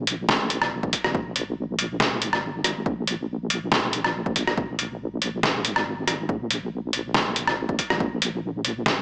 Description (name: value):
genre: deep dubstep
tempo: 140 BPM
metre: 4/4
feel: swing 53% on 16ths, half-time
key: unclear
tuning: A4 = 440 Hz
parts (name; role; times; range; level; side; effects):
- deep soft wobble bass; bass; 0.0-9.0 s; Ab1 to Bb1; -29 LUFS; equal; chorus
- trip hop sampler-style drum kit; drums; 0.1-9.0 s; hi-hat, rim click, snare drum; -22 LUFS; equal; none
- electronic kick drum; drums; 0.8-8.1 s; none; -27 LUFS; equal; none
room: light reverb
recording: small speaker sound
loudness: -22 LUFS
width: side -24 dB against mid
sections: 0.0-9.0 A section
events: none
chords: none